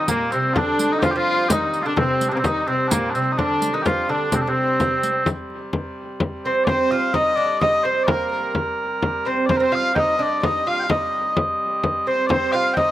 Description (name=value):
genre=medieval dance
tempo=128 BPM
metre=3/4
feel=straight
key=C minor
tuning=A4 = 440 Hz
part: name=mellow small bagpipes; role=melody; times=0.0-12.9 s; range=Bb3 to G5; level=-22 LUFS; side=equal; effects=slapback echo
part: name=dark fiddle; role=second line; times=0.0-12.9 s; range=Bb3 to F5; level=-25 LUFS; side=left 4 dB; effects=none
part: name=lute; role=second line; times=0.0-12.9 s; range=Bb2 to F4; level=-24 LUFS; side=right 4 dB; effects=none
part: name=warm hurdy-gurdy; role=drone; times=0.0-12.9 s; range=C3 to G3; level=-33 LUFS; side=right 1 dB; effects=stereo widening
part: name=frame drum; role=percussion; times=0.1-12.9 s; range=none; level=-24 LUFS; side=left 2 dB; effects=none
part: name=riq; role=percussion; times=0.1-5.4 s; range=none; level=-29 LUFS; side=right 4 dB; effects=none
room=little or no reverb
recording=recorded outdoors, with no room sound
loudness=-18 LUFS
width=side -13 dB against mid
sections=0.0-5.7 A section; 5.7-12.9 B section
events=none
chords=none